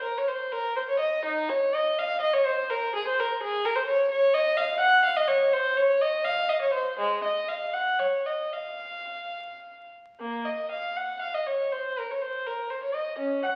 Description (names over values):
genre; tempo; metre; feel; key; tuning
classical, baroque-style suite movement for unaccompanied violin; 66-87 BPM (dotted quarters); 6/8; rubato; unclear; A4 = 439 Hz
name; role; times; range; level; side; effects
dark violin; solo; 0.0-13.5 s; Ab3 to Gb5; -27 LUFS; equal; none
room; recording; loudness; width
wet recital hall reverb, RT60 1.3 s; very old 78 rpm record, vinyl crackle; -27 LUFS; mono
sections
0.0-10.2 A section; 10.2-13.6 B section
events
none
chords
none